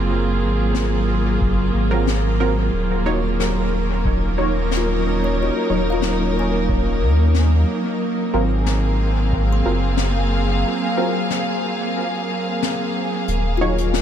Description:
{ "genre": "ambient dub", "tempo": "91 BPM", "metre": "4/4", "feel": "straight", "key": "Ab mixolydian", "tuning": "A4 = 440 Hz", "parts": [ { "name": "rich studio string section", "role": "sustained chords", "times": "0.0-14.0 s", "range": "Gb3 to F5", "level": "-22 LUFS", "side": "right 1 dB", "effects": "none" }, { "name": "warm sub bass", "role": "bass", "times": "0.0-14.0 s", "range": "Eb1 to Eb2", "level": "-20 LUFS", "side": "equal", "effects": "tube saturation" }, { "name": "backwards swelling texture", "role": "texture", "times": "0.0-13.3 s", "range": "Bb3 to Bb4", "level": "-31 LUFS", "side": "left 1 dB", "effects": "built-in reverb" }, { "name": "soft brush drum kit", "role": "drums", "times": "0.7-14.0 s", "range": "hi-hat, snare drum", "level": "-30 LUFS", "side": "left 6 dB", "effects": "dub echo" }, { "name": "electronic kick drum", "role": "drums", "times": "1.4-9.5 s", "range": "none", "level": "-24 LUFS", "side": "equal", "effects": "none" }, { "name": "filtered dub chord stab", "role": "stabs", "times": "1.9-13.7 s", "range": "Gb3 to Db5", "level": "-27 LUFS", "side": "right 1 dB", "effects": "chorus, dub echo" }, { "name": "kalimba", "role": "arpeggios", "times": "4.8-14.0 s", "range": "F4 to C6", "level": "-28 LUFS", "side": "left 6 dB", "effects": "dub echo" } ], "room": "moderate huge ambient reverb, RT60 7.2 s", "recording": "dreamy mix soaked in reverb", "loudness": "-17 LUFS", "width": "side -9 dB against mid", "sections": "0.0-13.3 A section", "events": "break 10.6-13.3", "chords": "0.0 Ab13; 2.7 Ebm7; 8.0 Ab13; 13.3 Ebm7", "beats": "| 0.10 0.76 1.42 2.08 | 2.73 3.40 4.05 4.71 | 5.37 6.03 6.69 7.35 | 8.01 8.67 9.33 9.99 | 10.65 11.31 11.97 12.63 | 13.29 13.94" }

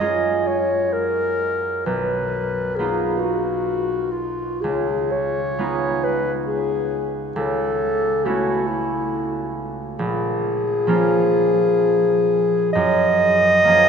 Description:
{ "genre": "classical, impressionist duo for clarinet and harp", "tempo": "66 BPM", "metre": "3/4", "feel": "uneven beats, rubato", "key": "F# major", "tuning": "A4 = 439 Hz", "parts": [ { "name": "mellow clarinet", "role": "melody", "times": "0.0-13.9 s", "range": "E4 to D#5", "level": "-19 LUFS", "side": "left 1 dB", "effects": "none" }, { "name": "concert harp", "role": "accompaniment", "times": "0.0-13.9 s", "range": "A#1 to A#4", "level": "-23 LUFS", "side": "right 2 dB", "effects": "none" } ], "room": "wet cathedral reverb, RT60 4.9 s", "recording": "recorded in a church or concert hall", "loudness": "-18 LUFS", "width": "side -6 dB against mid", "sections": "0.0-13.9 A section", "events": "none", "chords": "0.0 F#maj9; 1.9 Bmaj7#11; 4.6 C#13; 7.4 Aadd9/C#; 10.0 A#m7; 12.8 F#maj9", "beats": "0.00 0.95 | 1.85 2.77 3.67 | 4.62 5.58 6.47 | 7.36 8.24 9.11 | 9.99 10.87 11.79 | 12.75 13.67" }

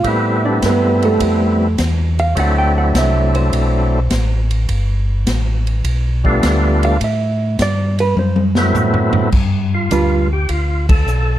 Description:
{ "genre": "soul jazz organ trio", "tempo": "103 BPM", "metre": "4/4", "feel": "swing 69% on 8ths", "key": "G major", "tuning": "A4 = 436 Hz", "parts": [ { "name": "percussive tonewheel organ", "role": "melody", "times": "0.0-11.4 s", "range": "F#3 to A4", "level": "-18 LUFS", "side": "equal", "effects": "overdrive, fast rotary speaker" }, { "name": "hollow-body jazz guitar", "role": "accompaniment", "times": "0.0-10.3 s", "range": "G3 to G5", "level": "-19 LUFS", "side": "right 3 dB", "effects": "none" }, { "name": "mellow tonewheel organ", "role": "bass", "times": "0.0-11.4 s", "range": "G1 to A2", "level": "-16 LUFS", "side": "equal", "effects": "chorus vibrato, slow rotary speaker" }, { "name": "swinging big-band drum kit", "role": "drums", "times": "0.0-11.3 s", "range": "crash cymbal, hi-hat, kick drum, ride cymbal, snare drum, toms", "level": "-20 LUFS", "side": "equal", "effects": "none" } ], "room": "light reverb", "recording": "dark, warm production", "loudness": "-13 LUFS", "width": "side -12 dB against mid", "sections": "0.0-9.3 A section; 9.3-11.4 B section", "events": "hollow-body jazz guitar solo 0.0-9.3; drum fill 8.2-9.3; band accent 10.8", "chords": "0.0 Am7; 2.4 D7; 4.7 G7; 7.0 A5; 8.2 Am69/F#; 9.3 G7", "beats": "| 0.04 0.62 1.20 1.78 | 2.36 2.94 3.52 4.11 | 4.69 5.27 5.85 6.43 | 7.01 7.59 8.17 8.75 | 9.33 9.91 10.49 11.07" }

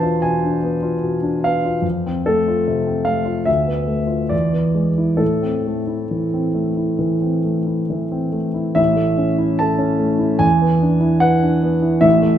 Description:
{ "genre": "classical, romantic character piece for solo piano", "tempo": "65-76 BPM", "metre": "4/4", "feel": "rubato", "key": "A minor, A major from 8.8 s", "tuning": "A4 = 438 Hz", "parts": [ { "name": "warm concert grand piano", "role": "solo", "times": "0.0-12.4 s", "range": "A1 to A5", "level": "-16 LUFS", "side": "equal", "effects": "none" } ], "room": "wet scoring stage reverb, RT60 1.8 s", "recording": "none", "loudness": "-16 LUFS", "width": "side -10 dB against mid", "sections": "0.0-8.8 A section; 8.8-12.4 B section", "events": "none", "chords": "0.0 E7b9; 1.8 F; 3.5 Bm7b5/D; 4.3 E7; 5.2 Am; 8.8 A; 10.4 E7", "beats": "0.23 1.03 | 1.84 2.65 3.48 4.32 | 5.21 6.12 7.03 7.92 | 8.78 9.63 10.45 11.25 | 12.05" }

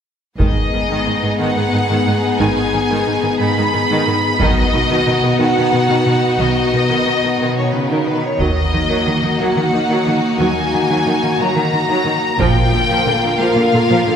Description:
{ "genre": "cinematic, epic orchestral film score", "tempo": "60 BPM (dotted quarters)", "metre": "6/8", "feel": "straight", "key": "G# minor", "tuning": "A4 = 440 Hz", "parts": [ { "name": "clear symphonic violin section", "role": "melody", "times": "0.4-14.2 s", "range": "A#4 to B5", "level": "-19 LUFS", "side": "left 1 dB", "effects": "none" }, { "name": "clear symphonic violin section", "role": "second line", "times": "0.4-14.2 s", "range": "D#4 to A#4", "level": "-23 LUFS", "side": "left 3 dB", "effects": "none" }, { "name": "clear symphonic viola section", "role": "accompaniment", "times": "0.4-14.2 s", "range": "D3 to B3", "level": "-21 LUFS", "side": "right 1 dB", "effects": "none" }, { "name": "mellow French horn section", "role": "sustained chords", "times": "0.4-14.2 s", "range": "A#3 to G#4", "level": "-21 LUFS", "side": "left 2 dB", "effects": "none" }, { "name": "clear symphonic double bass section", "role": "bass", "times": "0.4-12.6 s", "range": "G#1 to D#2", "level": "-24 LUFS", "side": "right 2 dB", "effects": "none" }, { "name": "warm symphonic cello section", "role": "bass", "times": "0.4-14.1 s", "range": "G#2 to D#3", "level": "-21 LUFS", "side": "right 2 dB", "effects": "none" }, { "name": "taiko ensemble", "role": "drums", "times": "0.4-13.7 s", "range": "none", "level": "-21 LUFS", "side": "equal", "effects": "none" } ], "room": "wet concert hall reverb, RT60 2.4 s", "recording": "recorded in a church or concert hall", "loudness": "-13 LUFS", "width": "side -8 dB against mid", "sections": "0.4-14.2 A section", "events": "none", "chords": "0.4 G#m; 4.4 B; 8.4 D#m; 12.4 A#", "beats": "| 0.40 1.40 | 2.40 3.40 | 4.40 5.40 | 6.40 7.40 | 8.40 9.40 | 10.40 11.40 | 12.40 13.40" }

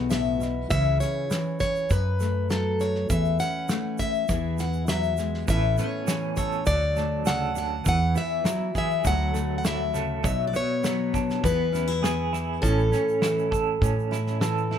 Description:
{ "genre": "acoustic folk duo or small band", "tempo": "101 BPM", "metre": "4/4", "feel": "straight", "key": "A major", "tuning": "A4 = 440 Hz", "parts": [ { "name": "picked plugged-in steel-string acoustic guitar", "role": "melody", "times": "0.0-14.4 s", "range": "A4 to F#5", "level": "-27 LUFS", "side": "left 2 dB", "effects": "plate reverb" }, { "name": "fingerpicked steel-string acoustic guitar", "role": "accompaniment", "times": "0.0-14.8 s", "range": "F#2 to A4", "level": "-29 LUFS", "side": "left 2 dB", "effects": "none" }, { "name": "upright bass", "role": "bass", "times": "0.0-14.8 s", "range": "A1 to A2", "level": "-27 LUFS", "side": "right 1 dB", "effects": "none" }, { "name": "loose indie drum kit", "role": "drums", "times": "0.1-14.8 s", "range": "kick drum, snare drum", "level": "-30 LUFS", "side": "equal", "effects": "none" }, { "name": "egg shaker", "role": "percussion", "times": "0.1-14.6 s", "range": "none", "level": "-39 LUFS", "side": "right 11 dB", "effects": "none" }, { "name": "electric guitar through a small old amp", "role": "arpeggios", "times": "5.5-14.8 s", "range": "E3 to A4", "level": "-31 LUFS", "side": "right 7 dB", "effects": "tremolo" } ], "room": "light reverb", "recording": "close, detailed microphones", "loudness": "-22 LUFS", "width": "side -9 dB against mid", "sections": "0.0-14.8 A section", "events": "none", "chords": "0.0 Esus2/B; 0.7 C#m; 1.9 F#m; 3.1 A/E; 4.3 E; 5.5 Aadd9; 6.7 D; 7.9 E; 9.1 Dadd9; 10.2 Bm; 11.4 E; 12.6 A", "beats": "0.11 | 0.71 1.30 1.90 2.50 | 3.09 3.69 4.29 4.88 | 5.48 6.07 6.67 7.26 | 7.86 8.46 9.05 9.64 | 10.24 10.84 11.43 12.03 | 12.62 13.21 13.81 14.40" }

